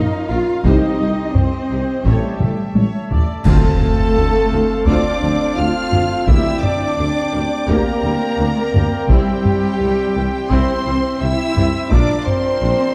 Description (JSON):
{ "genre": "cinematic, epic orchestral film score", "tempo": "85 BPM", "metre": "4/4", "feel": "straight", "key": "D minor from 3.5 s", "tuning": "A4 = 443 Hz", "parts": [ { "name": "warm symphonic violin section", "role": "melody", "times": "0.0-12.9 s", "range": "Eb5 to F6", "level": "-32 LUFS", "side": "equal", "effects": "none" }, { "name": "rich symphonic violin section", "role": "second line", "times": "0.0-12.9 s", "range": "G4 to F5", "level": "-33 LUFS", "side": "equal", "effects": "none" }, { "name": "pipe organ, flutes", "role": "sustained chords", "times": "0.0-12.9 s", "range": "A3 to G5", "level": "-28 LUFS", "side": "equal", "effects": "none" }, { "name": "warm French horn section", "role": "sustained chords", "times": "0.0-12.9 s", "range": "G3 to F4", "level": "-28 LUFS", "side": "equal", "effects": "none" }, { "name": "mellow trumpet section", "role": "stabs", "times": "0.0-12.9 s", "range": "G4 to F5", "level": "-27 LUFS", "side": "equal", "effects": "none" }, { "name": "mellow tuba", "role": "bass", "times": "0.0-12.7 s", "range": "A1 to D2", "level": "-27 LUFS", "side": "equal", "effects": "none" }, { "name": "rich symphonic double bass section", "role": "bass", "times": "0.0-12.7 s", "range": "A1 to D2", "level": "-25 LUFS", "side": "equal", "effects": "none" }, { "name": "warm symphonic cello section", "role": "bass", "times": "0.0-12.9 s", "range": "G3 to F4", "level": "-26 LUFS", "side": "equal", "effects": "none" }, { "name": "rich symphonic viola section", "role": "accompaniment", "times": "0.3-12.7 s", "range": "E3 to D5", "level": "-30 LUFS", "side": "equal", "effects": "none" }, { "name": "taiko ensemble", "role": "drums", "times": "0.6-12.6 s", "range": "none", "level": "-20 LUFS", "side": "equal", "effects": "none" }, { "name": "timpani", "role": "percussion", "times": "0.7-7.3 s", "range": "C3 to D3", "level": "-26 LUFS", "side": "equal", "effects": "none" }, { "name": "mellow hollow baroque flute", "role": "second line", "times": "3.5-12.9 s", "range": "G4 to F5", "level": "-28 LUFS", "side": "equal", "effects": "none" }, { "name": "clash cymbals and concert bass drum", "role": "percussion", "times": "3.5-4.8 s", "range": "none", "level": "-23 LUFS", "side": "equal", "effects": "none" }, { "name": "impact", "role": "sound effects", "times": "3.5-6.3 s", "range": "none", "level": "barely audible", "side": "none", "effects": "none" } ], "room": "moderate scoring stage reverb, RT60 1.9 s", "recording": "dark, warm production", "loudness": "-17 LUFS", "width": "mono", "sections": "0.0-3.5 A section; 3.5-12.9 B section", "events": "drum fill 2.4-3.5; band accent 3.5-4.2; impact 3.5-6.3", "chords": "0.0 Bbm; 0.6 Cm; 2.1 A7; 3.5 Dm7; 6.3 Gm/D; 9.1 C; 11.9 Bb", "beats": "| 0.64 1.35 2.05 2.75 | 3.46 4.16 4.87 5.57 | 6.28 6.98 7.68 8.39 | 9.09 9.80 10.50 11.21 | 11.91 12.61" }